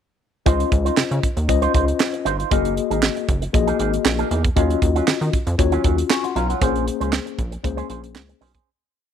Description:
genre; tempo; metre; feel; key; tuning
early-eighties boogie funk; 117 BPM; 4/4; straight; Db major; A4 = 439 Hz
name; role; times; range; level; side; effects
mellow tine electric piano; accompaniment; 0.5-8.4 s; Bb3 to Db6; -23 LUFS; left 12 dB; medium stereo tremolo
electric guitar with an envelope filter; riff; 0.5-8.7 s; Gb3 to C5; -26 LUFS; right 15 dB; lush chorus
rubbery square bass; bass; 0.5-8.6 s; Gb1 to Eb3; -23 LUFS; equal; none
tight funk drum kit; drums; 0.5-8.7 s; handclaps, hi-hat, kick drum, snare drum; -21 LUFS; right 2 dB; none
room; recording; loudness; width
small room ambience; 1960s-style stereo with parts hard left and right; -18 LUFS; side -8 dB against mid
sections
0.5-8.7 verse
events
fade-out 6.6-8.7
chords
0.5 Dbmaj9; 2.5 Gb69; 4.6 Ebm9; 6.6 Bbm9

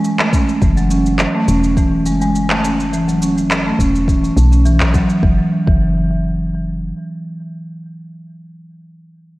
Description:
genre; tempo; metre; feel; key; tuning
organic downtempo; 104 BPM; 4/4; swing 53% on 16ths; unclear; A4 = 440 Hz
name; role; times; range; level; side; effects
marimba with medium mallets; arpeggios; 0.0-5.8 s; E3 to C#4; -17 LUFS; equal; tape echo
electronic cabasa and handclaps; drums; 0.0-5.2 s; none; -21 LUFS; equal; none
electronic kick drum; drums; 0.3-5.8 s; none; -16 LUFS; equal; none
woody FM bass; bass; 0.6-6.9 s; E1 to B1; -17 LUFS; equal; tube saturation, sidechain pumping
room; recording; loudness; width
light reverb; worn, warbling old tape, cassette tape, warbly pitch drift; -13 LUFS; side -19 dB against mid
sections
0.0-5.2 A section; 5.2-7.5 B section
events
none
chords
0.0 F#m7; 5.2 Esus2/F#

